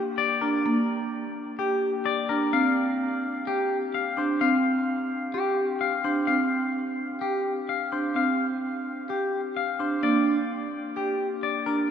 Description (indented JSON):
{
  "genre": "classical, minimalist pattern music",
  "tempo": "128 BPM",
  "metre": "4/4",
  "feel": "straight",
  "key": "unclear",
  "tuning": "A4 = 440 Hz",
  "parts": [
    { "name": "vibraphone with hard mallets", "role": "arpeggios", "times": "0.0-11.9 s", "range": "D4 to G4", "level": "-28 LUFS", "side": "right 3 dB", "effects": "none" },
    { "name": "twangy electric guitar", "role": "melody", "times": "0.2-11.9 s", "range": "G4 to F5", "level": "-28 LUFS", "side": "left 6 dB", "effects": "none" },
    { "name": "marimba with soft mallets", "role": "accompaniment", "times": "0.7-10.3 s", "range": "Bb3 to C4", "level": "-30 LUFS", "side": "equal", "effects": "none" }
  ],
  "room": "wet cathedral reverb, RT60 6.4 s",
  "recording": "none",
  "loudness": "-24 LUFS",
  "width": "side -8 dB against mid",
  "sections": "0.0-11.9 A section",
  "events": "none",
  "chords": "0.0 Bb; 2.5 Fsus2; 10.0 Bb"
}